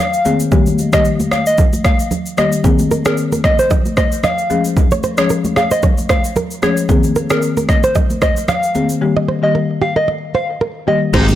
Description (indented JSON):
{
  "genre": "afrobeats",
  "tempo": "113 BPM",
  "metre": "4/4",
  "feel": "swing 55% on 16ths",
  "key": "Ab major",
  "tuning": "A4 = 438 Hz",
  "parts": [
    { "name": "soft struck synth lead", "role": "melody", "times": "0.0-11.0 s", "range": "Bb4 to F5", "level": "-19 LUFS", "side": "left 1 dB", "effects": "chorus" },
    { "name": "deep house drum kit", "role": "drums", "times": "0.1-11.4 s", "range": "crash cymbal, kick drum, rim click, shaker", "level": "-16 LUFS", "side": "equal", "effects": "soft clipping on snare" },
    { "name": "folk marimba with medium mallets", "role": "accompaniment", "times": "0.3-11.3 s", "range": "Eb3 to Ab4", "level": "-18 LUFS", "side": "left 4 dB", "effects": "none" },
    { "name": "congas", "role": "percussion", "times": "0.3-11.4 s", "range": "none", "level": "-23 LUFS", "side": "right 2 dB", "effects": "none" },
    { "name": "flamenco guitar", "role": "riff", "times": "2.9-11.2 s", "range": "G4 to F5", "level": "-20 LUFS", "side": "right 5 dB", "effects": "none" },
    { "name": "clear horn section", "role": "second line", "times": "11.1-11.3 s", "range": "C3 to Eb4", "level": "-18 LUFS", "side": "left 1 dB", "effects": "none" },
    { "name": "warm analog pad", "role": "sustained chords", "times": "11.1-11.4 s", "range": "Eb3 to G4", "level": "-24 LUFS", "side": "left 1 dB", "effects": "none" },
    { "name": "woody fretless electric bass", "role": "bass", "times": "11.1-11.4 s", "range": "Ab1", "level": "-13 LUFS", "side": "equal", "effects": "none" }
  ],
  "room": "light reverb, small room ambience",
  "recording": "blown-out, overdriven recording, overdrive",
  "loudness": "-12 LUFS",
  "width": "side -12 dB against mid",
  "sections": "0.0-11.1 A section",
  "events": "none",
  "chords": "0.0 Abadd9; 0.5 Eb; 2.6 Abadd9; 4.5 Db; 6.9 Abadd9; 9.0 Eb",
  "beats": "| 0.52 1.05 1.58 2.11 | 2.64 3.17 3.71 4.24 | 4.77 5.30 5.83 6.36 | 6.89 7.42 7.95 8.48 | 9.02 9.55 10.08 10.61 | 11.14"
}